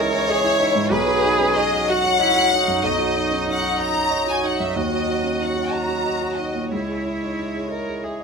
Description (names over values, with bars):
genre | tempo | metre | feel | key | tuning
neoclassical piano and strings | 62 BPM (dotted quarters) | 6/8 | rubato | B major | A4 = 439 Hz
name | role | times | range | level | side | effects
rich studio violin section | melody | 0.0-8.2 s | B4 to A#5 | -21 LUFS | left 3 dB | none
rich viola | accompaniment | 0.0-8.2 s | D#4 to A#4 | -25 LUFS | right 1 dB | none
warm concert grand piano | accompaniment | 0.0-8.2 s | B1 to E5 | -25 LUFS | right 2 dB | none
pedal harmonium | sustained chords | 0.0-8.2 s | E3 to D#5 | -29 LUFS | right 2 dB | none
room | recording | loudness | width
moderate studio reverb, RT60 0.7 s | minimal, uncompressed stereo recording | -18 LUFS | side -5 dB against mid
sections
0.0-8.2 A section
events
none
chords
0.0 C#madd9; 0.9 B; 4.8 D#m; 6.7 C#madd9